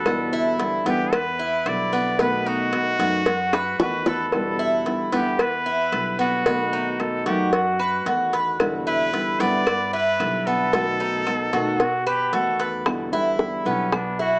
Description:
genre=latin, Cuban son and guajira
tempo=112 BPM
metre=4/4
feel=straight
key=E minor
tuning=A4 = 440 Hz
part: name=trumpet with straight mute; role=melody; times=0.0-14.4 s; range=C#4 to D5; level=-26 LUFS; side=equal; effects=none
part: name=flamenco guitar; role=accompaniment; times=0.0-14.0 s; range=B2 to F#4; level=-27 LUFS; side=equal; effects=none
part: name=Cuban tres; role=arpeggios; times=0.0-14.4 s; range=B3 to B4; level=-23 LUFS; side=right 1 dB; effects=tape echo
part: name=upright bass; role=bass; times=0.0-14.4 s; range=B1 to B2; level=-33 LUFS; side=equal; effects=none
part: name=claves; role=percussion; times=0.1-14.2 s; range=none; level=-37 LUFS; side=right 1 dB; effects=none
part: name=cowbell and bongos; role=percussion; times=0.1-14.4 s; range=none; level=-25 LUFS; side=left 1 dB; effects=none
room=wet spring reverb, RT60 1.7 s, small room reverb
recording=worn, warbling old tape, cassette tape, warbly pitch drift, small speaker sound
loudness=-19 LUFS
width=side -27 dB against mid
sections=0.0-12.9 A section; 12.9-14.4 B section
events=drum fill 3.5-4.3; muted trumpet solo 12.9-14.4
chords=0.1 Em7; 2.2 B7; 4.3 Em7; 6.5 B7; 8.6 Em7; 10.7 B7; 12.9 Em7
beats=| 0.06 0.59 1.13 1.66 | 2.19 2.73 3.26 3.80 | 4.33 4.86 5.40 5.93 | 6.46 7.00 7.53 8.06 | 8.60 9.13 9.66 10.20 | 10.73 11.26 11.80 12.33 | 12.86 13.40 13.93

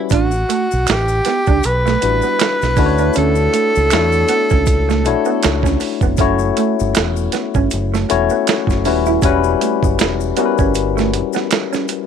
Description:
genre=R&B, neo-soul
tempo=79 BPM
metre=4/4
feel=swing 58% on 16ths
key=unclear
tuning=A4 = 440 Hz
part: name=breathy tenor saxophone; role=melody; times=0.0-5.8 s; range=F#4 to B4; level=-17 LUFS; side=right 1 dB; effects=none
part: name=barky tine electric piano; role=accompaniment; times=0.0-12.1 s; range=G3 to C#5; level=-18 LUFS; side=left 12 dB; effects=none
part: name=electric guitar through a small old amp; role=second line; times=0.1-11.9 s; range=A3 to E4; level=-21 LUFS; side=right 14 dB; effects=wide subtle chorus
part: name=deep dub fingered electric bass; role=bass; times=0.1-11.2 s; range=D#1 to E2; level=-19 LUFS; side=equal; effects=none
part: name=dusty soul sampler-style drum kit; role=drums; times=0.1-12.1 s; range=hi-hat, kick drum, snare drum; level=-19 LUFS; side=right 4 dB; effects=none
part: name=maracas and finger snaps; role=percussion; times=0.1-12.1 s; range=none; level=-30 LUFS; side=right 3 dB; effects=none
room=light reverb, small room ambience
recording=1960s-style stereo with parts hard left and right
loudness=-13 LUFS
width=side -7 dB against mid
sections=0.1-12.1 A section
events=break 10.7-12.1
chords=0.1 A13sus4; 2.8 Dmaj9; 6.2 F#m7; 9.2 Em69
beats=| 0.11 0.87 1.63 2.39 | 3.15 3.91 4.67 5.43 | 6.18 6.95 7.70 8.46 | 9.22 9.98 10.74 11.50

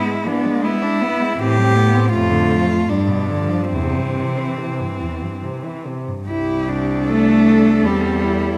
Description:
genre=classical, lyrical piece for cello ensemble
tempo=69-82 BPM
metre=3/4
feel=rubato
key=C major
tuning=A4 = 439 Hz
part: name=warm cello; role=melody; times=0.0-8.6 s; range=C4 to A4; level=-25 LUFS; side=equal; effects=none
part: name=warm cello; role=second line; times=0.0-8.6 s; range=E3 to E4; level=-25 LUFS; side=equal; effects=none
part: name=rich cello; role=accompaniment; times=0.0-8.6 s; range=E2 to D4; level=-22 LUFS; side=equal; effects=none
part: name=clear cello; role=bass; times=1.4-8.6 s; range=C2 to C3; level=-23 LUFS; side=equal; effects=none
room=wet recital hall reverb, RT60 1.4 s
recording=none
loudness=-18 LUFS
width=mono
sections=0.0-6.3 A section; 6.3-8.6 B section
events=none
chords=0.0 E7; 1.4 Am7; 2.1 Dm/F; 2.9 G7; 3.7 C/E; 6.3 C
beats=0.65 | 1.39 2.13 2.91 | 3.75 4.60 5.44 | 6.28 7.08 7.86

